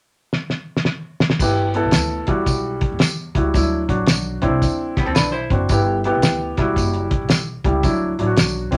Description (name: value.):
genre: uptempo 1960s-style soul.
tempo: 112 BPM.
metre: 4/4.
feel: swing 64% on 8ths.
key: G major.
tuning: A4 = 440 Hz.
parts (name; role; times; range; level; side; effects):
cloth-damped thuddy drum kit; drums; 0.3-8.8 s; crash cymbal, hi-hat, kick drum, snare drum; -22 LUFS; equal; none.
warm baby grand piano; accompaniment; 1.4-8.8 s; F#3 to A4; -23 LUFS; equal; none.
upright bass; bass; 1.4-8.8 s; E1 to E2; -27 LUFS; equal; none.
tambourine; percussion; 1.4-8.5 s; none; -30 LUFS; equal; none.
archtop guitar, miked and amplified; riff; 5.0-5.7 s; B3 to C5; -25 LUFS; equal; none.
room: wet small room reverb, RT60 0.5 s.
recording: none.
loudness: -19 LUFS.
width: mono.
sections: 0.0-1.4 A section; 1.4-8.8 B section.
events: drum fill 0.3-1.4.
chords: 0.0 N.C.; 1.4 G6; 2.2 Emadd9; 3.5 Dadd9; 4.4 Cadd9; 5.7 G6; 6.5 Emadd9; 7.8 Dadd9.